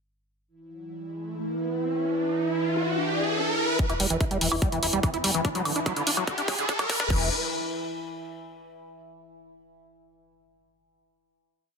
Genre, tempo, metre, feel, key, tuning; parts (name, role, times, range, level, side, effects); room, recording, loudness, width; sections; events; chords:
psychedelic trance; 145 BPM; 4/4; straight; A4 = 440 Hz
overtone-sweeping drone; sustained chords; 0.7-7.1 s; E3 to E4; -30 LUFS; equal; chorus, built-in reverb, sidechain pumping
riser; sound effects; 1.3-7.1 s; -30 LUFS; right 1 dB
vowel-sweep wobble bass; second line; 2.8-3.5 s; D4 to E4; -33 LUFS; left 1 dB; ensemble chorus, sidechain pumping, high-pass filter, dub echo
overdriven acid bass; riff; 3.8-7.3 s; D3 to E4; -29 LUFS; moving between left 6 dB and right 3 dB; auto-pan, sidechain pumping, digital delay
big-room dance drum kit; drums; 3.8-7.2 s; crash cymbal, hi-hat, woodblock; -29 LUFS; equal; small room ambience
electronic kick drum; drums; 3.8-7.2 s; -27 LUFS; equal; small room ambience
round analog bass; bass; 3.9-7.3 s; D1 to E1; -34 LUFS; equal
light reverb; dense, heavily limited modern master, high-pass filter; -24 LUFS; side -5 dB against mid
0.5-3.8 intro; 3.8-7.1 build; 7.1-8.8 final chord
riser 1.3-3.8, 3.8-7.1; build-up 3.8-7.1; filter sweep on acid bass 3.8-7.1; filter sweep 3.8-7.1; drum fill 5.4-7.1
0.5 N.C.; 3.8 Em; 5.4 Dadd9; 7.1 N.C.